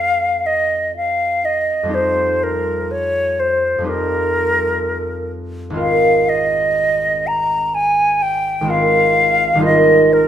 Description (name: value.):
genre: classical, impressionist duo for flute and harp.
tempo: 62 BPM.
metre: 4/4.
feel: rubato.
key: unclear.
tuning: A4 = 440 Hz.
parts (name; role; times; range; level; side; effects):
bright silver concert flute; melody; 0.0-10.3 s; Bb4 to Bb5; -16 LUFS; equal; none.
concert harp; accompaniment; 0.0-10.3 s; Ab1 to Bb4; -19 LUFS; right 1 dB; none.
room: wet stone room reverb, RT60 1.1 s.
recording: none.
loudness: -14 LUFS.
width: side -10 dB against mid.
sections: 0.0-10.3 A section.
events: none.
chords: 0.0 Fm9; 1.9 Cm7/F; 5.8 Ab69; 9.7 Ebadd9/Ab.